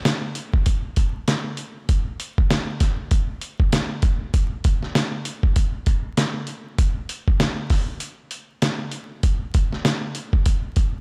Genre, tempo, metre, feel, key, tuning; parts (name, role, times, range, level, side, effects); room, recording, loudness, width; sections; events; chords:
hip hop; 98 BPM; 4/4; swing 59% on 16ths
trip hop sampler-style drum kit; drums; 0.1-10.9 s; hi-hat, kick drum, snare drum; -22 LUFS; equal
light reverb; dry, gritty hardware recording, vinyl crackle; -23 LUFS; mono
0.0-11.0 A section
break 8.0-9.2